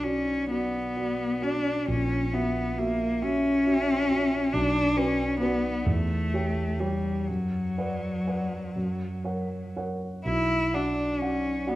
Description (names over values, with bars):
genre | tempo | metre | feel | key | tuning
classical, romantic duo for cello and grand piano | 39-47 BPM (dotted quarters) | 6/8 | rubato | B minor | A4 = 440 Hz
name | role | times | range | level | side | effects
rich cello | melody | 0.0-11.8 s | F#3 to E4 | -26 LUFS | left 1 dB | none
dark concert grand piano | accompaniment | 0.0-11.8 s | A#1 to G5 | -29 LUFS | right 1 dB | none
room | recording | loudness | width
wet recital hall reverb, RT60 1.4 s | none | -25 LUFS | side -16 dB against mid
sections
0.0-11.8 A section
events
none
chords
0.0 Bm; 1.9 F#7/A#; 4.5 Bm; 5.9 C#dim/E; 7.3 Bm/F#; 8.7 F#; 10.3 Bm